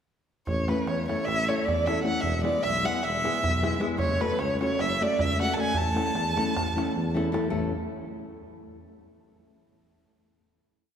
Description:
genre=balkan folk, Balkan wedding band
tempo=307 BPM (eighths)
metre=9/8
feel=straight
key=A major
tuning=A4 = 440 Hz
part: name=dark violin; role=melody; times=0.5-7.2 s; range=B4 to A5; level=-27 LUFS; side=right 1 dB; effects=none
part: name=mellow tuba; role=bass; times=0.5-7.7 s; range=E1 to E2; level=-32 LUFS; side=equal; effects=none
part: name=darbuka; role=percussion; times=0.5-7.7 s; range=none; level=-33 LUFS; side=right 2 dB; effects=none
part: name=nylon-string guitar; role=accompaniment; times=0.7-7.7 s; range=G#3 to A4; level=-30 LUFS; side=left 2 dB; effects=none
room=wet church reverb, RT60 3.4 s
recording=recorded in a church or concert hall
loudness=-24 LUFS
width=side -8 dB against mid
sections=0.5-7.5 A section; 7.5-9.3 final chord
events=drum fill 6.9-7.5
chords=0.5 A; 2.2 E; 4.0 F#m; 5.8 A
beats=| 0.48 0.68 0.87 1.06 1.26 1.45 1.65 1.84 2.04 | 2.23 2.43 2.62 2.82 3.01 3.21 3.40 3.60 3.79 | 3.99 4.18 4.38 4.58 4.77 4.97 5.17 5.36 5.56 | 5.75 5.95 6.15 6.34 6.54 6.73 6.93 7.12 7.32 | 7.52 7.71

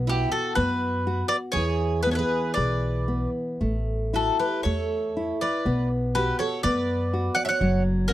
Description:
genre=fado-style ballad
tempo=59 BPM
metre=2/4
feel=uneven beats, rubato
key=B minor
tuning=A4 = 440 Hz
part: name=nylon-string guitar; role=accompaniment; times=0.0-8.1 s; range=E3 to G#4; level=-28 LUFS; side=left 1 dB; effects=none
part: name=upright bass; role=bass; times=0.0-8.1 s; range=F#1 to F#2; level=-27 LUFS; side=equal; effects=none
part: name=bowl-back mandolin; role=melody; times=0.1-8.1 s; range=G4 to F#5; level=-27 LUFS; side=left 2 dB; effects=none
part: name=picked twelve-string acoustic guitar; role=second line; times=0.1-8.1 s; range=E4 to D5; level=-32 LUFS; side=right 6 dB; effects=none
room=little or no reverb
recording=dry, close 1970s-style studio recording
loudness=-22 LUFS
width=side -14 dB against mid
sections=0.0-8.1 A section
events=none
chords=0.0 B5; 1.6 E; 3.6 A5; 5.7 B5; 7.6 F#5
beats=0.57 | 1.56 2.57 | 3.61 4.65 | 5.66 6.65 | 7.62

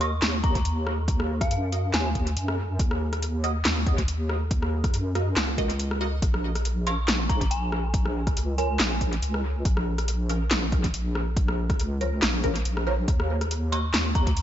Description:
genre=deep dubstep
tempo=140 BPM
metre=4/4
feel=swing 54% on 16ths, half-time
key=Bb minor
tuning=A4 = 440 Hz
part: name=dark detuned synth bell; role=melody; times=0.0-2.1, 6.9-9.0, 13.7-14.3 s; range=F5 to Db6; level=-33 LUFS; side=equal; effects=chorus, dub echo
part: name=filtered dub chord stab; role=stabs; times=0.0-13.8 s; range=F3 to Eb5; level=-33 LUFS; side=right 1 dB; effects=phaser, analog chorus, dub echo
part: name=deep soft wobble bass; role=bass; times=0.0-14.4 s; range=Bb1 to Gb2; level=-26 LUFS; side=equal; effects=chorus
part: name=deep house drum kit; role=drums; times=0.0-14.4 s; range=handclaps, hi-hat, rim click, snare drum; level=-28 LUFS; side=equal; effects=overdrive, dub echo
part: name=electronic kick drum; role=drums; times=0.4-14.3 s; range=none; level=-25 LUFS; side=equal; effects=overdrive
room=little or no reverb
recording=echo-heavy mix, nothing above 7.7 kHz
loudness=-23 LUFS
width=side -11 dB against mid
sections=0.0-14.4 A section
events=none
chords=0.0 Ebm; 6.2 Bbm; 13.1 N.C.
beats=0.22 0.65 | 1.08 1.51 1.94 2.37 | 2.79 3.22 3.65 4.08 | 4.51 4.94 5.37 5.79 | 6.22 6.65 7.08 7.51 | 7.94 8.37 8.79 9.22 | 9.65 10.08 10.51 10.94 | 11.37 11.79 12.22 12.65 | 13.08 13.51 13.94 14.37

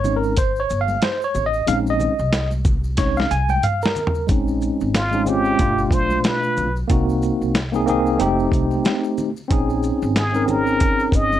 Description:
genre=hip hop, jazz-hop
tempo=92 BPM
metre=4/4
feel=swing 58% on 16ths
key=Bb dorian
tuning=A4 = 438 Hz
part: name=tine electric piano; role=accompaniment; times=0.0-11.4 s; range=B2 to Ab5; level=-20 LUFS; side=equal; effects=fast stereo tremolo
part: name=upright bass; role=bass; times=0.0-11.4 s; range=F1 to C2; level=-24 LUFS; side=equal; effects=none
part: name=dusty soul sampler-style drum kit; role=drums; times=0.0-11.3 s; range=hi-hat, kick drum, shaker, snare drum, toms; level=-20 LUFS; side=equal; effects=overdrive
part: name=congas and maracas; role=percussion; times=0.0-11.4 s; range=none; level=-35 LUFS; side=equal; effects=none
part: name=trumpet with plunger mute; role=melody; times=5.0-11.4 s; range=F4 to Eb5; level=-21 LUFS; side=equal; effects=none
room=light reverb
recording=dark, warm production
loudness=-17 LUFS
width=side -12 dB against mid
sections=0.0-4.3 A section; 4.3-11.4 B section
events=tine electric piano solo 0.0-4.3; drum fill 3.0-4.3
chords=0.0 Bbm11; 5.6 G7; 6.9 Cm7b5; 8.2 F7; 9.5 Bbm11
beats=0.37 1.02 | 1.68 2.33 2.98 3.63 | 4.29 4.94 5.59 6.24 | 6.89 7.55 8.20 8.85 | 9.50 10.15 10.81

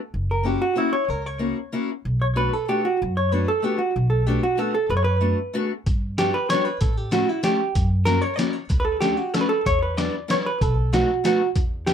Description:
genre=musette waltz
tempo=190 BPM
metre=3/4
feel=straight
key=B minor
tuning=A4 = 438 Hz
part: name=upright bass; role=bass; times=0.1-11.9 s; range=F#1 to A2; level=-24 LUFS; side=equal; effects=none
part: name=vintage hollow-body jazz guitar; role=melody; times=0.3-11.9 s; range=E4 to D5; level=-23 LUFS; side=right 2 dB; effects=slapback echo
part: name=fingerpicked steel-string acoustic guitar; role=accompaniment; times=0.4-11.9 s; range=G3 to G4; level=-25 LUFS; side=left 4 dB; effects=none
part: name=trip hop sampler-style drum kit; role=drums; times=5.9-11.9 s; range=hi-hat, kick drum, snare drum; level=-25 LUFS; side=equal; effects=none
room=little or no reverb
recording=close, detailed microphones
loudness=-20 LUFS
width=side -8 dB against mid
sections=0.0-5.9 A section; 5.9-11.9 B section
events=break 5.5-5.9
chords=0.1 F#7; 2.1 Bm7; 5.9 Gmaj7; 6.8 A7; 7.8 F#7; 8.7 Dmaj7; 9.7 Em7; 10.6 B7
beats=| 0.14 0.46 0.78 | 1.09 1.41 1.73 | 2.05 2.37 2.69 | 3.01 3.33 3.64 | 3.95 4.27 4.58 | 4.90 5.21 5.54 | 5.86 6.18 6.50 | 6.81 7.12 7.44 | 7.75 8.06 8.38 | 8.69 9.01 9.33 | 9.65 9.98 10.30 | 10.61 10.93 11.24 | 11.56 11.87

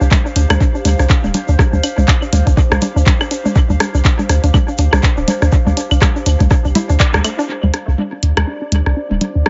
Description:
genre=minimal techno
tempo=122 BPM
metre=4/4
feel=swing 58% on 16ths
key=D minor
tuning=A4 = 442 Hz
part: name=hollow square pluck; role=riff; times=0.0-9.5 s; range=A3 to D5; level=-25 LUFS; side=equal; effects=chorus, sidechain pumping, analog delay
part: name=punchy sub bass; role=bass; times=0.0-9.4 s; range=D1 to D2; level=-16 LUFS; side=equal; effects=sidechain pumping
part: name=tube shaker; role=percussion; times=0.0-7.5 s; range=none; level=-34 LUFS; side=equal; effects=analog delay
part: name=warbly tape-like pad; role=texture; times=0.0-9.5 s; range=G4 to F5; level=-29 LUFS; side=equal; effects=chorus, built-in reverb, phaser, sidechain pumping
part: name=electronic kick drum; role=drums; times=0.1-7.1 s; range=none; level=-15 LUFS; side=equal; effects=none
part: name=minimal click drum kit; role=drums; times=0.1-9.3 s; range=handclaps, hi-hat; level=-22 LUFS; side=equal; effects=analog delay
part: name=booming analog drum machine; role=percussion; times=0.1-9.5 s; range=claves, congas, rim click, toms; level=-20 LUFS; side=equal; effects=dub echo
part: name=bubbling stepped-filter texture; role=texture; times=8.2-9.5 s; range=D4 to D5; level=-32 LUFS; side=equal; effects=chorus, built-in reverb, sidechain pumping
room=light reverb, digital ambience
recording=echo-heavy mix, nothing above 7.6 kHz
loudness=-14 LUFS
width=mono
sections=0.0-7.5 A section; 7.5-9.5 B section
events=filter sweep on synth arpeggio sound 0.0-7.5, 7.5-9.5; band accent 7.0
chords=0.0 Dm7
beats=0.11 0.61 1.10 | 1.59 2.08 2.57 3.06 | 3.56 4.05 4.54 5.03 | 5.52 6.01 6.51 7.00 | 7.49 7.98 8.47 8.97 | 9.46

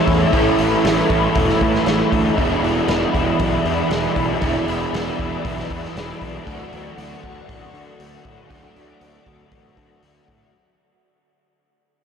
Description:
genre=rock, shoegaze and dream pop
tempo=118 BPM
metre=4/4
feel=straight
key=unclear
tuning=A4 = 440 Hz
part: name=string machine, full ensemble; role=sustained chords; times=0.0-10.5 s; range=E4 to D6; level=-25 LUFS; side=equal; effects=phaser, ensemble chorus
part: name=overdriven semi-hollow guitar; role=riff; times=0.0-10.5 s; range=A2 to G#4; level=-23 LUFS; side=right 7 dB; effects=reverse reverb
part: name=raw garage guitar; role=riff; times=0.0-10.5 s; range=E2 to F#4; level=-23 LUFS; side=left 5 dB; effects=overdrive, ensemble chorus
part: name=fuzz picked electric bass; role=bass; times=0.1-10.4 s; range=E1 to D3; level=-26 LUFS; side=equal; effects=overdrive
part: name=raw garage drum kit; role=drums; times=0.1-10.4 s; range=hi-hat, kick drum, snare drum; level=-24 LUFS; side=equal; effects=none
room=wet huge ambient reverb, RT60 9.1 s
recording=dreamy mix soaked in reverb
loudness=-16 LUFS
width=side -7 dB against mid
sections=0.0-10.5 A section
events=fade-out 0.0-10.5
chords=0.0 A; 2.4 E5; 6.5 Dmaj7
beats=| 0.32 0.83 1.34 1.86 | 2.37 2.88 3.39 3.90 | 4.41 4.92 5.43 5.95 | 6.46 6.97 7.48 7.99 | 8.49 9.00 9.51 10.02

